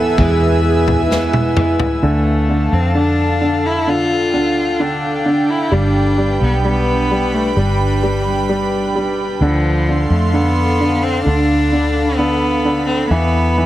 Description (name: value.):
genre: pop ballad.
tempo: 65 BPM.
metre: 4/4.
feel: straight.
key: unclear.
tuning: A4 = 439 Hz.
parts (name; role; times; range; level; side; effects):
warm French horn section; second line; 0.0-2.0 s; D#4 to A4; -20 LUFS; right 4 dB; none.
clear concert grand piano; accompaniment; 0.0-13.7 s; D3 to B3; -20 LUFS; equal; none.
airy breathy pad; sustained chords; 0.0-13.7 s; D4 to E6; -21 LUFS; right 1 dB; chorus.
nylon-string guitar; arpeggios; 0.0-2.0 s; E2 to E4; -20 LUFS; left 3 dB; none.
vintage muted fingered electric bass; bass; 0.0-13.7 s; G1 to G#2; -18 LUFS; equal; none.
natural country drum kit; drums; 0.2-2.0 s; kick drum, snare drum, toms; -19 LUFS; equal; none.
rich cello; melody; 2.0-13.7 s; F3 to F4; -19 LUFS; left 2 dB; none.
room: light reverb, small room ambience.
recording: heavily compressed radio sound.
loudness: -13 LUFS.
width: side -14 dB against mid.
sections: 0.0-2.0 A section; 2.0-13.7 B section.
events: drum fill 1.1-2.0.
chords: 0.0 E; 2.0 Dm; 5.7 G; 9.4 Dm7; 13.1 E.